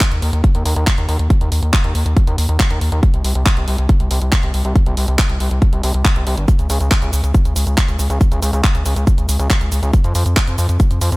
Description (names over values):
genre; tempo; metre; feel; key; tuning
uplifting trance; 139 BPM; 4/4; straight; unclear; A4 = 439 Hz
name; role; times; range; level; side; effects
electronic kick drum; drums; 0.0-10.9 s; none; -14 LUFS; equal; none
house drum kit; drums; 0.0-11.2 s; handclaps, hi-hat, shaker; -22 LUFS; equal; sidechain pumping on hats, sidechain pumping on cymbals, sidechain pumping on perc
gritty driven synth bass; bass; 0.1-11.2 s; G1 to F2; -17 LUFS; equal; distortion, sidechain pumping
room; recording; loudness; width
little or no reverb; none; -13 LUFS; side -22 dB against mid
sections
0.0-11.2 A section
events
none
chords
none